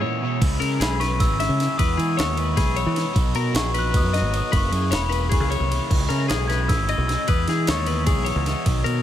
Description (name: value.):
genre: math rock and midwest emo.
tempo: 306 BPM (eighths).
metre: 7/8.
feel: straight.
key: E lydian.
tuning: A4 = 436 Hz.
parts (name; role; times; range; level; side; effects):
twelve-string electric guitar; arpeggios; 0.0-9.0 s; G#4 to E5; -28 LUFS; left 11 dB; tape echo.
crunchy overdriven guitar; riff; 0.0-9.0 s; F#2 to E4; -29 LUFS; equal; phaser.
modern bright fingered electric bass; bass; 0.4-9.0 s; E1 to E3; -23 LUFS; equal; none.
jungle sampler-style drum kit; drums; 0.4-8.9 s; crash cymbal, kick drum, ride cymbal, snare drum; -25 LUFS; right 1 dB; none.
glockenspiel with rubber mallets; melody; 0.8-8.5 s; B5 to G#6; -27 LUFS; left 1 dB; none.
room: light reverb.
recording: none.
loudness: -19 LUFS.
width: side -11 dB against mid.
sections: 0.4-9.0 A section.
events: break 0.0-0.4.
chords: 0.4 C#m7; 1.8 Emaj7; 3.2 Bmaj7; 4.5 F#9sus4; 5.9 C#m9; 7.3 Emaj7.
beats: 0.01 0.21 | 0.41 0.60 0.80 0.99 1.19 1.39 1.58 | 1.78 1.98 2.17 2.37 2.56 2.76 2.96 | 3.15 3.35 3.54 3.74 3.94 4.13 4.33 | 4.52 4.72 4.92 5.11 5.31 5.50 5.70 | 5.90 6.09 6.29 6.49 6.68 6.88 7.07 | 7.27 7.47 7.66 7.86 8.06 8.25 8.45 | 8.64 8.84.